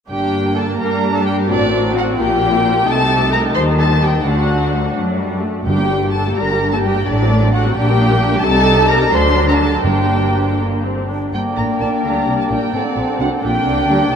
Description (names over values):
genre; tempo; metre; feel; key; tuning
quick classical-period movement for symphony orchestra; 86 BPM (dotted quarters); 6/8; rubato; G minor; A4 = 436 Hz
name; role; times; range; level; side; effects
muted chamber violin section; melody; 0.1-14.2 s; D5 to C6; -20 LUFS; left 2 dB; none
muted symphonic violin section; second line; 0.1-14.2 s; D4 to D5; -21 LUFS; right 2 dB; none
muted chamber viola section; accompaniment; 0.1-14.2 s; F#3 to G4; -20 LUFS; left 1 dB; none
muted chamber cello section; bass; 0.1-14.2 s; G2 to A3; -22 LUFS; equal; none
muted chamber double bass section; bass; 0.1-14.2 s; G1 to G2; -21 LUFS; equal; none
timpani; percussion; 5.7-6.3, 9.8-10.6 s; G2; -25 LUFS; right 2 dB; none
clear clarinet; second line; 11.3-14.2 s; Bb3 to Eb4; -22 LUFS; left 3 dB; none
wooden flute; second line; 11.3-14.2 s; F#5 to A5; -22 LUFS; right 1 dB; none
mellow French horn section; sustained chords; 11.8-14.0 s; F#3 to D4; -24 LUFS; right 2 dB; none
room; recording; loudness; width
wet cathedral reverb, RT60 6.8 s; in a vast, echoing space; -13 LUFS; side -7 dB against mid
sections
0.1-11.3 A section; 11.3-14.2 A section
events
none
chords
0.1 Gm; 1.5 D7/A; 2.2 Gm/Bb; 2.9 Am7b5/C; 4.2 D; 5.7 Gm; 7.1 D7/A; 7.8 Gm/Bb; 8.4 Am7b5/C; 9.1 D; 9.8 Gm; 12.7 D7/A; 13.4 Gm/Bb